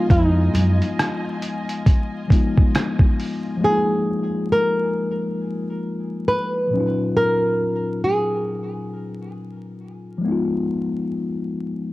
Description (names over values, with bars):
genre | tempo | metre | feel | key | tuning
lo-fi hip hop | 68 BPM | 4/4 | swing 61% on 16ths | unclear | A4 = 439 Hz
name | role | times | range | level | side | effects
flamenco guitar | melody | 0.0-10.2 s | Eb4 to Cb5 | -22 LUFS | right 1 dB | low-pass filter, cassette tape
mellow tine electric piano | accompaniment | 0.0-11.9 s | Bb2 to F4 | -24 LUFS | left 3 dB | medium stereo tremolo, low-pass filter, cassette tape
rich studio string section | sustained chords | 0.0-3.6 s | F4 to Ab5 | -34 LUFS | equal | low-pass filter, cassette tape
upright bass | bass | 0.1-0.8 s | F2 to Gb2 | -17 LUFS | equal | none
lo-fi sampler-style drum kit | drums | 0.1-3.4 s | hi-hat, kick drum, rim click | -17 LUFS | equal | vintage 12-bit sampler grit
room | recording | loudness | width
light reverb, small room ambience | home recording on cassette, vinyl crackle | -18 LUFS | side -18 dB against mid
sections
0.0-3.6 A section; 3.6-11.9 B section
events
none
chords
0.0 Fm7b5; 3.6 Bb7sus4; 6.7 Ebm7; 10.2 Fm7b5